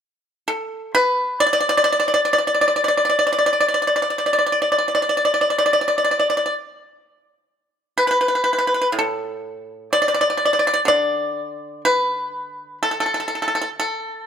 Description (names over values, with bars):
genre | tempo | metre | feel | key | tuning
chinese traditional, Chinese solo plucked strings | 55-66 BPM | 4/4 | rubato | unclear | A4 = 443 Hz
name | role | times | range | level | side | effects
pipa | solo | 0.5-14.3 s | A2 to D5 | -17 LUFS | equal | none
room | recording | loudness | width
light reverb | close, detailed microphones | -17 LUFS | side -8 dB against mid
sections
0.0-7.9 A section; 7.9-14.3 B section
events
none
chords
none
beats
| 0.01 0.94 1.88 2.84 | 3.81 4.78 5.81 6.88 | 7.94 8.95 9.91 10.88 | 11.85 12.82 13.78